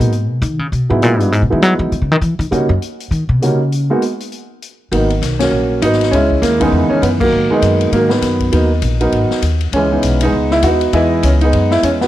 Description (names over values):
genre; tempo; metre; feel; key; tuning
jazz piano trio; 200 BPM; 4/4; swing 60% on 8ths; G# minor; A4 = 443 Hz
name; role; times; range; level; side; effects
warm upright piano; melody; 0.0-12.1 s; B2 to D#5; -14 LUFS; right 1 dB; none
upright bass; bass; 0.0-12.1 s; G#1 to F#3; -15 LUFS; left 1 dB; none
swinging big-band drum kit; drums; 0.0-12.1 s; crash cymbal, hi-hat, kick drum, ride cymbal, snare drum; -25 LUFS; left 5 dB; none
room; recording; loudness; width
light reverb, small room ambience; 1960s-style stereo; -12 LUFS; side -14 dB against mid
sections
0.0-4.9 A section; 4.9-12.1 B section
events
upright bass solo 0.0-4.9; band accent 5.4, 7.2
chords
0.1 Emaj7; 2.5 D#7#9; 3.7 N.C.; 4.9 G#m9; 6.1 C#m9; 7.3 G#m9; 9.7 C#m9